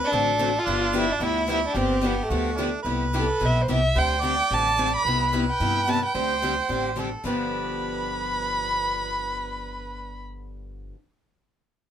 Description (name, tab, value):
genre	acoustic string swing (jazz manouche)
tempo	219 BPM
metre	4/4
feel	swing 57% on 8ths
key	G mixolydian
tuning	A4 = 435 Hz
part	warm violin	melody	0.0-10.2 s	A3 to B5	-26 LUFS	right 1 dB	none
part	warm harmonica	second line	0.0-10.2 s	D4 to D5	-28 LUFS	right 3 dB	none
part	picked steel-string acoustic guitar	accompaniment	0.1-11.0 s	G2 to A4	-30 LUFS	left 5 dB	none
part	picked steel-string acoustic guitar	accompaniment	0.1-11.0 s	G2 to A4	-34 LUFS	right 4 dB	none
part	upright bass	bass	0.1-10.9 s	G1 to G2	-30 LUFS	equal	none
room	light reverb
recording	minimal, uncompressed stereo recording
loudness	-22 LUFS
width	side -9 dB against mid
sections	0.0-2.9 A section; 2.9-7.3 B section; 7.3-9.4 C section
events	none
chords	0.0 D7; 0.7 G7; 2.9 Cmaj7; 4.0 D7sus4; 5.1 Cmaj7; 6.2 D7sus4; 7.3 G7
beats	0.12 0.39 | 0.67 0.94 1.21 1.49 | 1.76 2.04 2.31 2.58 | 2.86 3.13 3.41 3.68 | 3.96 4.23 4.51 4.78 | 5.06 5.33 5.61 5.88 | 6.16 6.43 6.70 6.98 | 7.25 7.53 7.80 8.08 | 8.35 8.62 8.90 9.17